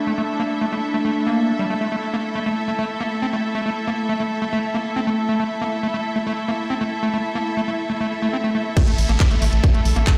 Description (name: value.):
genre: psychedelic trance.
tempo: 138 BPM.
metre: 4/4.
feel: straight.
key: unclear.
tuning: A4 = 439 Hz.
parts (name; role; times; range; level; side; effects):
evolving wavetable pad; sustained chords; 0.0-10.2 s; A3 to A4; -28 LUFS; equal; chorus, built-in reverb, sidechain pumping.
muted symphonic string section; texture; 0.0-10.2 s; E4 to E5; -30 LUFS; equal; sidechain pumping.
overdriven acid bass; riff; 0.1-10.0 s; G3 to C4; -26 LUFS; equal; sidechain pumping, tape echo.
swell and downlifter; sound effects; 8.1-10.2 s; none; -35 LUFS; equal; none.
electronic kick drum; drums; 8.8-10.2 s; none; -17 LUFS; equal; none.
garage drum kit; drums; 8.8-10.2 s; handclaps, hi-hat; -29 LUFS; equal; none.
round analog bass; bass; 8.9-10.0 s; A1 to Bb1; -20 LUFS; equal; none.
room: moderate digital room reverb, RT60 1.0 s.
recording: played on a big sound system in a bare room, large studio reverb.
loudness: -22 LUFS.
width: mono.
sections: 0.0-8.8 A section; 8.8-10.2 B section.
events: swell 8.1-8.8; drop 8.8-10.2.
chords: 0.0 A5.